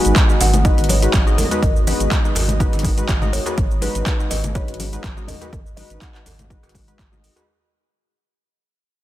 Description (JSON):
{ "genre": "afro house", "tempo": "123 BPM", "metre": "4/4", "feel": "swing 53% on 16ths", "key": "G# minor", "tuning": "A4 = 436 Hz", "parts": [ { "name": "buzzing kalimba", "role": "melody", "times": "0.0-6.5 s", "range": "B4 to G#5", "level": "-28 LUFS", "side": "left 1 dB", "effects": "digital delay" }, { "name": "dark analog pad", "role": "sustained chords", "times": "0.0-7.5 s", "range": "G#3 to D#5", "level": "-28 LUFS", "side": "right 1 dB", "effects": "chorus, sidechain pumping" }, { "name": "warm analog keys", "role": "stabs", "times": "0.0-7.5 s", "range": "G#3 to D#5", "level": "-25 LUFS", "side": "left 3 dB", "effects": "chorus, sidechain pumping, digital delay" }, { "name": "deep house drum kit", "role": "drums", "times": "0.0-7.5 s", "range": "cabasa, handclaps, hi-hat", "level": "-24 LUFS", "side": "equal", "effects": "overdrive, small room ambience" }, { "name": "warm sub bass", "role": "bass", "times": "0.1-7.3 s", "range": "G#1", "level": "-21 LUFS", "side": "equal", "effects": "sidechain pumping" }, { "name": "congas", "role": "percussion", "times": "0.1-7.2 s", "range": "none", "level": "-28 LUFS", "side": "left 3 dB", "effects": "none" }, { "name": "electronic kick drum", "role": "drums", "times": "0.2-7.1 s", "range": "none", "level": "-18 LUFS", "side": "equal", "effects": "overdrive, small room ambience" }, { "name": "djembe", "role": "percussion", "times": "0.4-7.5 s", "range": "none", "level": "-30 LUFS", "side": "right 4 dB", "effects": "none" } ], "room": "little or no reverb", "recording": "dense, heavily limited modern master", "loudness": "-15 LUFS", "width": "side -14 dB against mid", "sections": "0.0-7.5 A section", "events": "drop 0.0-7.5; fade-out 0.0-7.5", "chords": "0.0 G#m7" }